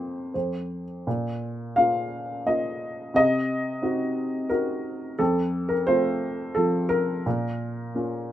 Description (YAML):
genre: classical, lyrical solo piano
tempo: 87 BPM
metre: 3/4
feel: rubato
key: Bb minor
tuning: A4 = 444 Hz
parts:
  - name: dark upright piano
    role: solo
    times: 0.0-8.3 s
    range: F2 to F5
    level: -24 LUFS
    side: equal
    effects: none
room: light reverb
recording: minimal, uncompressed stereo recording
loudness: -23 LUFS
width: side -12 dB against mid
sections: 0.0-8.3 A section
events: none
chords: 0.3 N.C.; 1.1 Bbm; 3.2 Cdim; 5.2 F; 7.3 Bbm